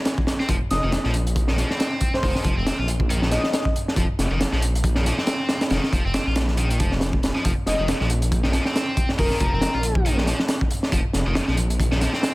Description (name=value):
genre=breakbeat, breaks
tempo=138 BPM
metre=4/4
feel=swing 56% on 16ths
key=unclear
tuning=A4 = 440 Hz
part: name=crunchy breakbeat drum kit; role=drums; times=0.1-12.3 s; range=hi-hat, kick drum, snare drum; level=-22 LUFS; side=equal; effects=none
part: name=high-gain distorted guitar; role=riff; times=0.4-12.3 s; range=Eb3 to F4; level=-29 LUFS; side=equal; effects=distortion, tube saturation, tape echo
part: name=detuned saw bass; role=bass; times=0.5-12.1 s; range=F1 to Bb1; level=-23 LUFS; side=equal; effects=none
part: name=airy dreamy lead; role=melody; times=0.7-3.6, 7.7-10.0 s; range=Bb4 to Eb5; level=-28 LUFS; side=left 1 dB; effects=chorus, old record sound, tape echo
room=small room ambience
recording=none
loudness=-19 LUFS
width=side -20 dB against mid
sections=0.0-12.3 A section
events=none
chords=0.0 F7(no3)